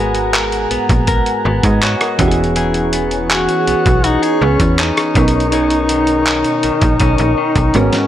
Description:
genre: contemporary R&B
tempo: 81 BPM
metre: 4/4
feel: straight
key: unclear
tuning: A4 = 440 Hz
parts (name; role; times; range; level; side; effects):
- soft electric-piano-like synth keys; accompaniment; 0.0-8.1 s; G#2 to G#5; -20 LUFS; right 2 dB; chorus
- glassy FM pad; sustained chords; 0.0-8.1 s; G#4 to C#6; -22 LUFS; equal; ensemble chorus, built-in reverb
- direct-recorded clean electric guitar; arpeggios; 0.0-8.1 s; G#2 to A#4; -21 LUFS; left 5 dB; digital delay
- slap-like FM bass; bass; 0.0-7.9 s; E1 to G#2; -18 LUFS; equal; none
- dusty soul sampler-style drum kit; drums; 0.1-8.1 s; handclaps, hi-hat, kick drum, rim click, snare drum; -17 LUFS; equal; none
- mellow duduk; melody; 3.3-8.1 s; C#4 to F#4; -16 LUFS; equal; none
- synth chime; texture; 5.5-6.3 s; A#4; -31 LUFS; equal; none
room: little or no reverb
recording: none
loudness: -12 LUFS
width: side -11 dB against mid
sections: 0.0-8.1 A section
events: drum fill 7.7-8.1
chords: 0.0 G#m9; 2.2 E6; 5.2 Bmaj9

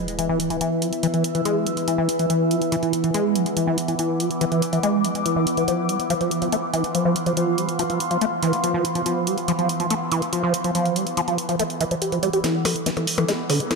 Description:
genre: psychedelic trance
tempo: 142 BPM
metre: 4/4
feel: straight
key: unclear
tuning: A4 = 441 Hz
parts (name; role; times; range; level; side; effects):
- overtone-sweeping drone; sustained chords; 0.0-13.8 s; E3 to B3; -28 LUFS; right 1 dB; chorus, built-in reverb, phaser
- liquid acid bass; riff; 0.0-13.8 s; D3 to G4; -22 LUFS; equal; phaser, auto-pan, tape echo
- sub drop and riser; sound effects; 0.0-0.6, 13.6-13.8 s; none; -40 LUFS; right 1 dB; none
- deep dark ambient pad; texture; 0.0-13.8 s; E4 to E6; -28 LUFS; left 2 dB; chorus, built-in reverb
- techno drum kit; drums; 0.1-13.8 s; hi-hat, percussion blips, snare drum; -28 LUFS; equal; none
room: moderate lush hall reverb, RT60 2.0 s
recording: none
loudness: -20 LUFS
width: side -3 dB against mid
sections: 0.0-12.4 A section; 12.4-13.8 B section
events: impact 0.0-0.6; filter sweep on acid bass 0.0-12.4, 12.4-13.8; build-up 12.4-13.8; drum fill 12.4-13.8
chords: 0.0 E5; 5.7 F5; 12.4 E5

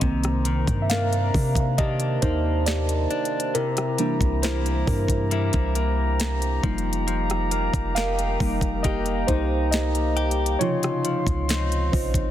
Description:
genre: contemporary R&B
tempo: 68 BPM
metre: 4/4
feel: straight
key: unclear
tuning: A4 = 440 Hz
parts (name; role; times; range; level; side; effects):
- muted felt-like synth keys; accompaniment; 0.0-12.3 s; C3 to F5; -26 LUFS; right 1 dB; chorus
- mellow brass ensemble; sustained chords; 0.0-12.3 s; Eb3 to C6; -31 LUFS; right 1 dB; none
- direct-recorded clean electric guitar; arpeggios; 0.0-12.3 s; C3 to G4; -30 LUFS; left 7 dB; wide subtle chorus, digital delay
- warm 808-style bass; bass; 0.0-12.3 s; F1 to C3; -25 LUFS; equal; none
- trap drum kit; drums; 0.0-12.3 s; hi-hat, kick drum, rim click, snare drum; -27 LUFS; equal; none
room: light reverb, digital ambience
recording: dense, heavily limited modern master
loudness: -21 LUFS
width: side -12 dB against mid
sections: 0.0-12.3 A section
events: synth keys solo 0.0-12.3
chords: 0.0 Cm9; 3.5 C7; 6.6 F9sus4; 10.6 Dbmaj9

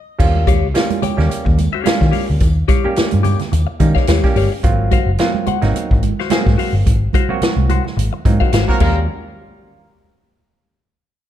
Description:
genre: funk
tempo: 108 BPM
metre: 4/4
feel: swing 56% on 16ths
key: Eb mixolydian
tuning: A4 = 440 Hz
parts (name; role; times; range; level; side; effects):
- mellow clav; stabs; 0.2-9.1 s; Gb3 to Ab4; -22 LUFS; right 4 dB; none
- vintage muted picked electric bass; bass; 0.2-9.1 s; Gb1 to Eb3; -17 LUFS; equal; none
- swinging big-band drum kit; drums; 0.2-8.9 s; crash cymbal, hi-hat, kick drum, snare drum; -17 LUFS; equal; none
- tambourine; percussion; 0.2-4.6 s; none; -39 LUFS; left 5 dB; none
- congas; percussion; 0.4-9.1 s; none; -24 LUFS; right 9 dB; none
- semi-hollow electric guitar; accompaniment; 0.5-9.0 s; Gb4 to G5; -23 LUFS; left 11 dB; phaser
- warm horn section; second line; 8.7-9.0 s; Gb3 to Bb4; -24 LUFS; right 1 dB; none
room: light reverb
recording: dark, warm production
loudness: -13 LUFS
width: side -11 dB against mid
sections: 0.2-9.1 A section; 9.1-11.3 B section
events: stop 0.0; band accent 6.9-9.1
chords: 0.2 Eb9; 4.6 Ab13; 8.8 Eb9; 9.1 N.C.

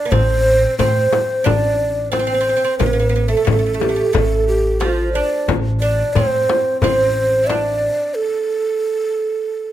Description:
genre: Arabic maqam ensemble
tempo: 89 BPM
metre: 4/4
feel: straight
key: A maqam bayati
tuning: A4 = 440 Hz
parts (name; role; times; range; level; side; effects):
- breathy mellow ney; melody; 0.0-9.7 s; F4 to D5; -18 LUFS; right 1 dB; none
- oud; second line; 0.0-8.1 s; F3 to E4; -22 LUFS; right 3 dB; none
- upright bass; bass; 0.1-7.9 s; A1 to A2; -21 LUFS; equal; none
- darbuka; percussion; 0.1-7.7 s; none; -23 LUFS; left 2 dB; none
- frame drum; percussion; 0.1-7.7 s; none; -24 LUFS; left 8 dB; none
room: light reverb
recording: close, detailed microphones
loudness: -15 LUFS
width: side -12 dB against mid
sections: 0.1-9.7 A section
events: stop 8.2-9.7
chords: none

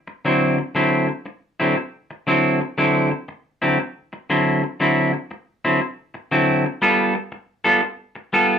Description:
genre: blues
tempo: 119 BPM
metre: 4/4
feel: swing 66% on 8ths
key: D mixolydian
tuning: A4 = 436 Hz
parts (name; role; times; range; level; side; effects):
- clean electric guitar; solo; 0.1-8.6 s; D3 to A4; -17 LUFS; equal; none
room: moderate studio reverb, RT60 0.5 s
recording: band playing live in one room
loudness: -18 LUFS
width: side -8 dB against mid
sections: 0.0-2.8 A section; 2.8-8.6 A section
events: none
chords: 0.0 D9; 6.8 G9

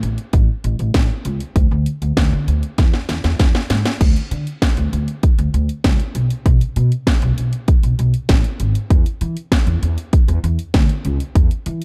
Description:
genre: synth-pop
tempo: 98 BPM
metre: 4/4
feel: straight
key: unclear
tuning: A4 = 439 Hz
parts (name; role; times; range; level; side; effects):
- upright bass; bass; 0.0-11.8 s; G#1 to E3; -21 LUFS; equal; none
- house drum kit; drums; 0.0-11.8 s; crash cymbal, hi-hat, kick drum, snare drum; -18 LUFS; equal; none
room: little or no reverb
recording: dark, warm production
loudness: -17 LUFS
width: mono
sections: 0.0-4.0 A section; 4.0-11.8 B section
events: drum fill 2.8-4.0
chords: none

